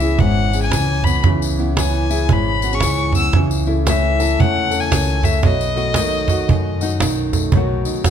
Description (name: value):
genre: acoustic folk duo or small band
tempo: 115 BPM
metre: 4/4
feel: swing 62% on 8ths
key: unclear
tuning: A4 = 440 Hz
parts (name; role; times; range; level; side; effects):
- rich fiddle; melody; 0.0-7.0 s; D#5 to E6; -22 LUFS; left 2 dB; none
- nylon-string guitar; accompaniment; 0.0-8.1 s; F#2 to F#4; -23 LUFS; left 5 dB; none
- clear upright piano; arpeggios; 0.0-8.1 s; E3 to A4; -24 LUFS; right 6 dB; none
- upright bass; bass; 0.0-7.8 s; G#1 to F#2; -21 LUFS; left 1 dB; none
- tambourine; percussion; 0.0-8.1 s; none; -29 LUFS; left 8 dB; none
- cajon; percussion; 0.2-8.1 s; none; -19 LUFS; right 3 dB; none
room: moderate recital hall reverb, RT60 1.5 s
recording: close, detailed microphones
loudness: -15 LUFS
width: side -8 dB against mid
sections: 0.0-7.5 A section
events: none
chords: 0.0 C#m7; 3.3 A/C#; 5.4 B7